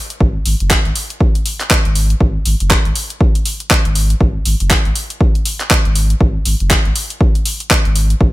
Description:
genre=deep house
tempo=120 BPM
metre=4/4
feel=swing 59% on 16ths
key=unclear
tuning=A4 = 439 Hz
part: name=deep house drum kit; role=drums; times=0.1-8.2 s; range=handclaps, hi-hat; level=-17 LUFS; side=equal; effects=studio reverb
part: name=warm sub bass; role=bass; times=0.2-8.3 s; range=F#1 to G#1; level=-15 LUFS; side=equal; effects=sidechain pumping
part: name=electronic kick drum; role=drums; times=0.2-8.3 s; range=none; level=-14 LUFS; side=equal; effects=studio reverb
room=digital ambience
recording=none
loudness=-12 LUFS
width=side -17 dB against mid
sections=0.0-8.3 A section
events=none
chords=none

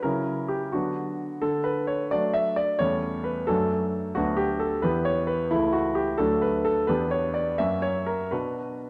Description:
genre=classical-period piano sonatina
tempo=87 BPM (dotted quarters)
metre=6/8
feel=rubato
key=B minor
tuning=A4 = 441 Hz
part: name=bright concert grand piano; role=solo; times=0.0-8.9 s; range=C#2 to E5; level=-26 LUFS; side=equal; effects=none
room=wet recital hall reverb, RT60 1.5 s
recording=none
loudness=-26 LUFS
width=mono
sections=0.0-8.9 A section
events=none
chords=0.0 F#7/C#; 0.7 Bm/D; 1.4 D; 2.8 A7/E; 3.5 D/F#; 4.2 Bm/D; 4.8 Em; 5.5 A/C#; 6.2 D; 6.9 Em7; 7.6 F#; 8.3 Bm

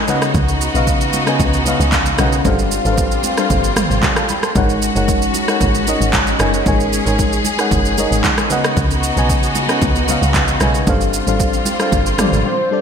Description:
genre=amapiano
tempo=114 BPM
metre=4/4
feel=straight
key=unclear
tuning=A4 = 440 Hz
part: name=FM electric piano with auto-pan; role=accompaniment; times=0.0-12.8 s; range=C#3 to C6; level=-19 LUFS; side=left 2 dB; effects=none
part: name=rich studio string section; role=sustained chords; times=0.0-12.8 s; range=C#3 to G#4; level=-20 LUFS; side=equal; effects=sidechain pumping
part: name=deep house drum kit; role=drums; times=0.1-12.4 s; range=handclaps, kick drum, rim click, shaker, toms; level=-18 LUFS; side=right 1 dB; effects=overdrive, gated reverb
part: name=congas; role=percussion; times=0.1-12.3 s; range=none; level=-26 LUFS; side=right 4 dB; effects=none
part: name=deep log drum bass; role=bass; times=0.3-12.4 s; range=F#1 to C#2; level=-19 LUFS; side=equal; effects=none
part: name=soft octave-layered synth lead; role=melody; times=12.5-12.8 s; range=C5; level=-17 LUFS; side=right 1 dB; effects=chorus
room=moderate lush hall reverb, RT60 1.6 s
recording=bright 1980s-style digital production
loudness=-13 LUFS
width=side -7 dB against mid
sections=0.0-12.8 A section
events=drums muted 12.5-12.8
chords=0.1 C#9sus4; 2.5 G9sus4; 4.6 G#9sus4; 8.5 C#9sus4; 10.9 G9sus4

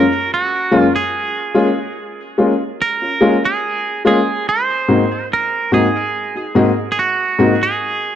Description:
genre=reggae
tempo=72 BPM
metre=4/4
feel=straight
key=unclear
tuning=A4 = 440 Hz
part: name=twangy electric guitar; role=melody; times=0.0-8.2 s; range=F#4 to B#4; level=-18 LUFS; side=right 4 dB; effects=tape echo
part: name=warm grand piano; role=accompaniment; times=0.7-7.5 s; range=F#2 to F#4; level=-15 LUFS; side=left 2 dB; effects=slapback echo
room=light reverb, studio reverb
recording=dry, close 1970s-style studio recording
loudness=-14 LUFS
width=side -10 dB against mid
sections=0.0-8.2 A section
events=none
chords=0.0 F#maj7; 1.1 A#m7; 4.5 G#7

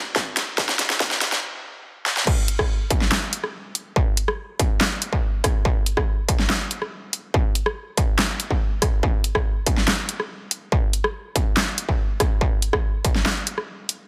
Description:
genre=dubstep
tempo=142 BPM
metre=4/4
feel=half-time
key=none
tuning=none
part: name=dubstep drum kit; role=drums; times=0.2-14.0 s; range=crash cymbal, handclaps, hi-hat, rim click, snare drum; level=-25 LUFS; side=equal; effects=overdrive, high-pass filter on hats, high-pass filter on snare, high-pass filter on cymbals
part: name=electronic kick drum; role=drums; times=0.2-13.1 s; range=none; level=-24 LUFS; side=equal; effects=distortion
room=light reverb, digital ambience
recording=dense, heavily limited modern master, high-pass filter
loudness=-23 LUFS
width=mono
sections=0.0-2.3 A section; 2.3-14.1 B section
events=build-up 0.0-2.3; drum fill 0.0-1.4, 2.1; stop 1.4-2.3; drop 2.3-14.1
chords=none

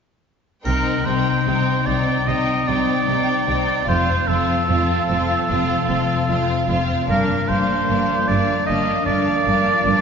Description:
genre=cinematic, emotional film score for orchestra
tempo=75 BPM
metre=4/4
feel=rubato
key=C dorian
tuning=A4 = 435 Hz
part: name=clear oboe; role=second line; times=0.6-10.0 s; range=A4 to Eb5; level=-21 LUFS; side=right 1 dB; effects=none
part: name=concert harp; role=arpeggios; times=0.6-10.0 s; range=F2 to D6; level=-25 LUFS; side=left 6 dB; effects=none
part: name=warm studio cello section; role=bass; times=0.6-9.9 s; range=F2 to C3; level=-26 LUFS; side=right 2 dB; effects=none
part: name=rich studio violin section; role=melody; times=0.7-10.0 s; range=F5 to G5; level=-27 LUFS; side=left 1 dB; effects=none
part: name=warm studio violin section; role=second line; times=0.7-10.0 s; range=D4 to F4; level=-26 LUFS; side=left 2 dB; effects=none
part: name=warm studio viola section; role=accompaniment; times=0.7-10.0 s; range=Bb3 to C4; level=-26 LUFS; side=right 3 dB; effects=none
part: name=rich studio double bass section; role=bass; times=0.7-9.9 s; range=F1 to C2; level=-27 LUFS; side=right 2 dB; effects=none
part: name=triangle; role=percussion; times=0.7-2.2 s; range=none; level=-44 LUFS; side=left 3 dB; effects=none
room=wet concert hall reverb, RT60 1.8 s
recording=recorded in a church or concert hall, nothing above 7.6 kHz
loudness=-17 LUFS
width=side -6 dB against mid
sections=0.6-10.0 A section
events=none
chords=0.6 Cm; 3.9 F; 7.1 Gm7

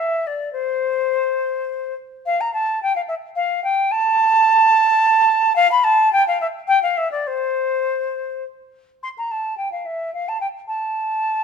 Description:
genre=classical, baroque-style fantasia for unaccompanied flute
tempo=100-112 BPM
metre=3/4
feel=rubato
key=C major from 5.6 s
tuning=A4 = 440 Hz
part: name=silver concert flute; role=solo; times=0.0-11.4 s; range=C5 to C6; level=-17 LUFS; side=equal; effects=none
room=moderate large studio reverb, RT60 1.4 s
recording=none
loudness=-17 LUFS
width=side -6 dB against mid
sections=0.0-9.0 A section; 9.0-11.4 A section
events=none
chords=none

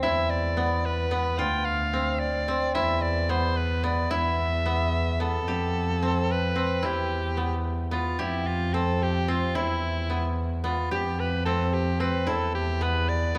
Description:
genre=contemporary instrumental, chamber music in an uneven meter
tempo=220 BPM (eighths)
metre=5/8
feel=straight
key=E phrygian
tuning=A4 = 441 Hz
part: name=edgy soprano saxophone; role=melody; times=0.0-13.4 s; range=E4 to G5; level=-31 LUFS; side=equal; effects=none
part: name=koto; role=arpeggios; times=0.0-13.4 s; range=B3 to G4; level=-32 LUFS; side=equal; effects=none
part: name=warm double bass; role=bass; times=0.0-13.4 s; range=D2 to F2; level=-30 LUFS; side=equal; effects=none
room=moderate concert hall reverb, RT60 2.6 s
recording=none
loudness=-26 LUFS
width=mono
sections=0.0-5.5 A section; 5.5-13.4 B section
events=none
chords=0.0 E5; 1.4 Dm7; 2.8 E5; 5.5 Fadd9; 6.8 Em; 8.2 Fsus2; 9.6 E5; 10.9 Fsus2; 12.3 E5

